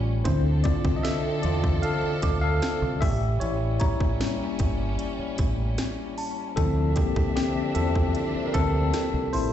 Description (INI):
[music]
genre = contemporary R&B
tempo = 76 BPM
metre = 4/4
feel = straight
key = D minor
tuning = A4 = 442 Hz
[part]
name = bright tine electric piano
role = accompaniment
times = 0.0-9.5 s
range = D3 to F5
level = -27 LUFS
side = left 2 dB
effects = medium stereo tremolo
[part]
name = warm studio string section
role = sustained chords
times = 0.0-9.5 s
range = D3 to E5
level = -33 LUFS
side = equal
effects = none
[part]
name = deep dub fingered electric bass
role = bass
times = 0.0-9.5 s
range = G1 to E2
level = -26 LUFS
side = right 1 dB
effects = none
[part]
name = trap drum kit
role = drums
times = 0.3-9.5 s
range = hi-hat, kick drum, snare drum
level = -27 LUFS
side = equal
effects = none
[part]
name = small celesta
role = texture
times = 2.2-9.5 s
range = A5 to D6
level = -38 LUFS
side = right 1 dB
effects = ping-pong delay
[sound]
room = digital ambience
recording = played on a big sound system in a bare room, large studio reverb, nothing above 8.0 kHz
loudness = -23 LUFS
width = side -10 dB against mid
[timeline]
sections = 0.0-9.5 A section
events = break 0.0; tine electric piano solo 0.0-9.5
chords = 0.3 Dm9; 3.0 A7b9; 6.6 Dm9